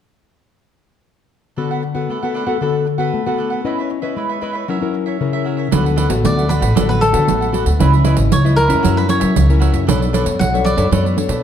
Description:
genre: samba and choro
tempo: 116 BPM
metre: 4/4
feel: straight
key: D major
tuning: A4 = 440 Hz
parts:
  - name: cavaquinho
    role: accompaniment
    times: 1.6-11.4 s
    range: D4 to F#5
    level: -25 LUFS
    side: right 6 dB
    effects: none
  - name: nylon-string guitar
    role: accompaniment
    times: 1.6-11.4 s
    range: C#3 to D#5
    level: -19 LUFS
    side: left 5 dB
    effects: none
  - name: upright bass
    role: bass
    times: 5.7-11.4 s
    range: G#1 to F#3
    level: -15 LUFS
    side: equal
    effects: none
  - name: pandeiro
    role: percussion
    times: 5.7-11.4 s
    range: none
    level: -20 LUFS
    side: right 6 dB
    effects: none
  - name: cavaquinho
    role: melody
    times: 6.3-10.9 s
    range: A4 to F#5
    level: -19 LUFS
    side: equal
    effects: none
room: moderate large studio reverb, RT60 1.2 s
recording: dark, warm production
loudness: -14 LUFS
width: side -9 dB against mid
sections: 1.6-5.7 A section; 5.7-11.4 B section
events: none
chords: 1.6 D6; 3.6 C#m9; 4.7 F#7; 5.7 D6; 7.8 C#m9; 8.8 F#7; 9.9 Bm9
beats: | 1.57 2.09 2.61 3.13 | 3.65 4.17 4.69 5.21 | 5.73 6.25 6.76 7.28 | 7.80 8.32 8.84 9.36 | 9.88 10.40 10.92

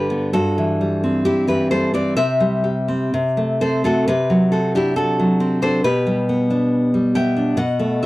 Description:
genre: romantic piece for solo classical guitar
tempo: 62-70 BPM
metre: 2/4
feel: rubato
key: G major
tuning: A4 = 438 Hz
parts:
  - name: nylon-string guitar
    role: solo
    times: 0.0-8.1 s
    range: G2 to G5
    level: -16 LUFS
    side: equal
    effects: none
room: light reverb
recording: dry, close 1970s-style studio recording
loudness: -16 LUFS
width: side -18 dB against mid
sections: 0.0-8.1 A section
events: none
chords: 0.4 C/G; 2.2 C; 3.1 Am/C; 4.1 D7/C; 5.8 G/B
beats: | 0.35 1.27 | 2.19 3.13 | 4.08 4.98 | 5.84 6.70 | 7.58

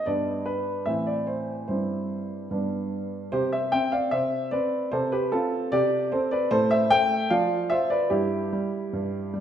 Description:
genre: classical-period piano sonatina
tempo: 75 BPM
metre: 2/4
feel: straight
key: C major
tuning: A4 = 441 Hz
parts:
  - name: warm baby grand piano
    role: solo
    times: 0.0-9.4 s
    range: G2 to G5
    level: -23 LUFS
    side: equal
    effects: none
room: moderate recital hall reverb, RT60 1.6 s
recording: minimal, uncompressed stereo recording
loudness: -23 LUFS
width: side -9 dB against mid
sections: 0.0-3.3 A section; 3.3-9.4 B section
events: none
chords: 0.1 G; 0.9 Am; 1.7 C/G; 2.5 G; 3.3 C; 4.9 F/C; 5.7 C5; 6.5 Am; 7.3 Dm/F; 8.1 Em/G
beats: | 0.07 0.87 | 1.68 2.51 | 3.33 4.14 | 4.94 5.73 | 6.52 7.32 | 8.12 8.93

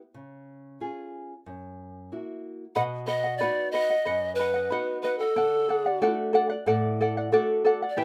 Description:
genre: andean folk, Andean ensemble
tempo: 92 BPM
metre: 4/4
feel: straight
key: unclear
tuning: A4 = 439 Hz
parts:
  - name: nylon-string guitar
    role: accompaniment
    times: 0.1-8.0 s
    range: F#2 to G#4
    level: -36 LUFS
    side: equal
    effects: none
  - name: polished pan flute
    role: melody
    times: 2.8-8.0 s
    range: A4 to F#5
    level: -28 LUFS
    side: equal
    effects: none
  - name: charango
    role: accompaniment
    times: 2.8-8.0 s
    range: E4 to G5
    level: -28 LUFS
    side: equal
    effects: none
room: moderate small room reverb, RT60 0.5 s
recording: rough home demo mix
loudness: -26 LUFS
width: mono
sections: 0.0-2.8 A section; 2.8-8.0 B section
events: charango solo 0.0-2.8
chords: 0.1 C#; 1.5 F#7; 2.8 B; 5.4 D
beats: | 0.15 0.80 1.46 2.11 | 2.76 3.41 4.07 4.72 | 5.37 6.02 6.67 7.32 | 7.97

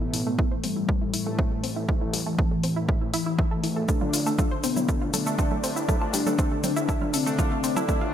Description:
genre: melodic techno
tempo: 120 BPM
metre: 4/4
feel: straight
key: A minor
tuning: A4 = 441 Hz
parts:
  - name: soft octave-layered synth lead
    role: melody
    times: 0.0-8.1 s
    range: E3 to D4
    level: -29 LUFS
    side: left 3 dB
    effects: chorus, phaser, sidechain pumping, digital delay
  - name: analog pluck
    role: arpeggios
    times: 0.0-8.1 s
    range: E3 to C5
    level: -31 LUFS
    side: right 2 dB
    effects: chorus, sidechain pumping, digital delay
  - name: brassy analog pad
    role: stabs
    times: 0.0-8.1 s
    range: A2 to D4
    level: -30 LUFS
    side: left 2 dB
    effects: chorus, tremolo, sidechain pumping, digital delay
  - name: swelling detuned saw bass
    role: bass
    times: 0.0-8.1 s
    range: E1 to A1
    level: -42 LUFS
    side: right 1 dB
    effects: none
  - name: electronic hi-hat, shaker, congas and woodblock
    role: drums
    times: 0.1-8.0 s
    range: none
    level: -30 LUFS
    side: left 1 dB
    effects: overdrive
  - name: electronic kick drum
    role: drums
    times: 0.4-8.0 s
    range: none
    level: -25 LUFS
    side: right 1 dB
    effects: overdrive
room: moderate lush hall reverb, RT60 1.9 s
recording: bright 1980s-style digital production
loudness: -23 LUFS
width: side -10 dB against mid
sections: 0.0-8.1 A section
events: build-up 0.0-8.1; filter sweep on synth pluck 0.0-8.1; filter sweep on soft synth lead 0.0-8.1; filter sweep on analog synth pad 0.0-8.1; drum fill 3.9-8.1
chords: 0.0 Amadd9; 3.9 Dm7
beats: 0.39 0.89 1.39 | 1.89 2.39 2.89 3.39 | 3.89 4.39 4.89 5.39 | 5.89 6.39 6.89 7.39 | 7.89

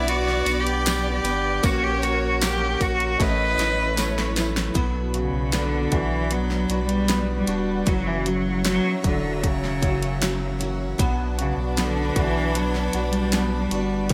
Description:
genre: pop ballad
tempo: 77 BPM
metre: 4/4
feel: straight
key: B harmonic minor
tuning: A4 = 440 Hz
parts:
  - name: rich cello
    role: melody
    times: 0.0-14.1 s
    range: C#3 to B4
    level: -27 LUFS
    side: equal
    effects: none
  - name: warm studio violin section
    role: second line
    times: 0.0-4.7, 11.0-14.1 s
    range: D4 to D#5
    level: -34 LUFS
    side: equal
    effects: none
  - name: warm grand piano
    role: accompaniment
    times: 0.0-14.1 s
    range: F#3 to F#4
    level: -33 LUFS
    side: equal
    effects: ensemble chorus
  - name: airy breathy pad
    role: sustained chords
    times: 0.0-14.1 s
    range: E4 to D6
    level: -36 LUFS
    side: equal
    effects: chorus
  - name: picked steel-string acoustic guitar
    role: arpeggios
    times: 0.0-14.1 s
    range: F#2 to B4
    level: -35 LUFS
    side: equal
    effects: ensemble chorus
  - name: warm sub bass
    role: bass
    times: 0.0-14.1 s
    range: E1 to B1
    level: -30 LUFS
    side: equal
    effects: none
  - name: pop drum kit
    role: drums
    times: 0.1-14.1 s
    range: hi-hat, kick drum, snare drum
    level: -28 LUFS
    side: equal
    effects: gated reverb
  - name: tambourine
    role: percussion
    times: 0.5-4.5 s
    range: none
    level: -38 LUFS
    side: equal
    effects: none
room: light reverb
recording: bright 1980s-style digital production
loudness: -23 LUFS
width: mono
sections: 0.0-4.8 A section; 4.8-14.1 A section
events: drum fill 3.2-4.8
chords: 0.0 Bm; 1.6 F#/A#; 3.2 Aadd9; 4.8 Bm; 7.9 F#7; 11.0 Bm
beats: 0.08 0.86 | 1.64 2.42 3.20 3.98 | 4.75 5.53 6.31 7.09 | 7.87 8.65 9.43 10.21 | 10.99 11.77 12.55 13.33 | 14.11

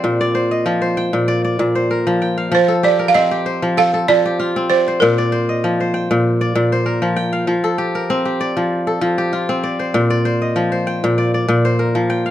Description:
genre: west african traditional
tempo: 97 BPM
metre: 4/4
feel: straight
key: unclear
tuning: A4 = 440 Hz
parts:
  - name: kora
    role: arpeggios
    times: 0.0-12.3 s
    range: Bb2 to G5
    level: -16 LUFS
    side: left 1 dB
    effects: none
  - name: balafon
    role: melody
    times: 2.5-6.2 s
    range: Bb4 to F5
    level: -15 LUFS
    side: right 4 dB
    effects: none
room: light reverb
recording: close, detailed microphones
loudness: -15 LUFS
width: side -12 dB against mid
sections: 0.0-12.3 A section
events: none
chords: 0.0 Bb; 2.5 F; 5.0 Bb; 7.5 F; 9.9 Bb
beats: | 0.04 0.66 1.28 1.90 | 2.52 3.15 3.77 4.39 | 5.01 5.62 6.24 6.86 | 7.48 8.10 8.71 9.33 | 9.94 10.56 11.17 11.79

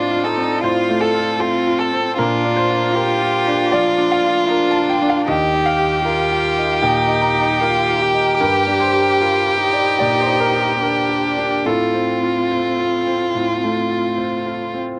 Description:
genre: neoclassical piano and strings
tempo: 76 BPM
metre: 4/4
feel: uneven beats, rubato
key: unclear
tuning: A4 = 440 Hz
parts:
  - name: rich violin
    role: melody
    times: 0.0-14.8 s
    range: F4 to A4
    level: -20 LUFS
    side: equal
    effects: none
  - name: rich cello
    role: second line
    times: 0.0-14.6 s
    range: C4 to G4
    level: -26 LUFS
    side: equal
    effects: none
  - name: bright concert grand piano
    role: accompaniment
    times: 0.0-15.0 s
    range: Eb2 to Bb5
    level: -22 LUFS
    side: equal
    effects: none
room: light reverb, small room ambience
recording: none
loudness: -17 LUFS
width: mono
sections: 0.0-15.0 A section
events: none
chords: 0.0 F/A; 2.2 Bb; 5.3 Eb; 8.4 Gm; 11.6 F/A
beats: 0.62 1.40 | 2.18 2.94 3.72 4.50 | 5.28 6.05 6.83 7.62 | 8.41 9.20 10.00 10.81 | 11.65 12.50 13.34 14.18

